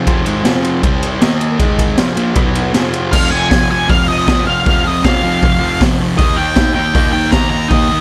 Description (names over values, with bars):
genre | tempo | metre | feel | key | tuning
garage rock duo or trio | 157 BPM | 4/4 | straight | F minor | A4 = 440 Hz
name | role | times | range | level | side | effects
overdriven combo organ | sustained chords | 0.0-3.1 s | C4 to F#5 | -27 LUFS | equal | none
fuzz guitar | riff | 0.0-8.0 s | F2 to Eb4 | -18 LUFS | equal | distortion
raw garage drum kit | drums | 0.1-7.8 s | crash cymbal, hi-hat, kick drum, ride cymbal, snare drum | -17 LUFS | equal | none
octave-fuzz lead guitar | melody | 3.1-8.0 s | Eb5 to Bb5 | -18 LUFS | equal | distortion
room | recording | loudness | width
light reverb | none | -14 LUFS | mono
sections
0.0-3.1 A section; 3.1-8.0 B section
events
none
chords
0.0 Fm; 0.8 C5; 1.2 Eb5; 1.6 Ab5; 2.0 Fm; 2.4 B5; 2.8 Fm; 3.1 F5; 6.2 Eb